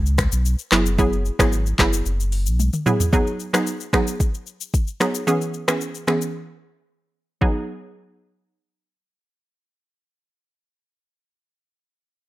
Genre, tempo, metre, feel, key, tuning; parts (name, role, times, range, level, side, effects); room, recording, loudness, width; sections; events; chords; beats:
afrobeats; 112 BPM; 4/4; straight; G# minor; A4 = 440 Hz
warm sub bass; bass; 0.0-2.7 s; F#1 to C#2; -20 LUFS; equal
afro-pop drum kit; drums; 0.1-7.5 s; finger snaps, handclaps, hi-hat, kick drum, rim click, shaker, toms; -21 LUFS; equal
hollow square pluck; accompaniment; 0.7-10.7 s; E3 to G#4; -22 LUFS; right 1 dB; chorus, low-pass filter
little or no reverb; -19 LUFS; side -17 dB against mid
0.0-3.1 A section; 3.1-7.4 B section; 7.4-11.7 C section
drum fill 2.6-3.1; filter sweep on synth pluck 3.1-7.4; break 6.3-7.4
0.0 N.C.; 0.7 F#9sus4; 3.1 G#m7; 5.3 C#m7; 7.4 G#m7
0.45 | 0.99 1.52 2.06 2.59 | 3.13 3.67 4.20 4.74 | 5.27 5.81 6.34 6.88 | 7.42 7.95 8.49 9.02 | 9.56 10.09 10.63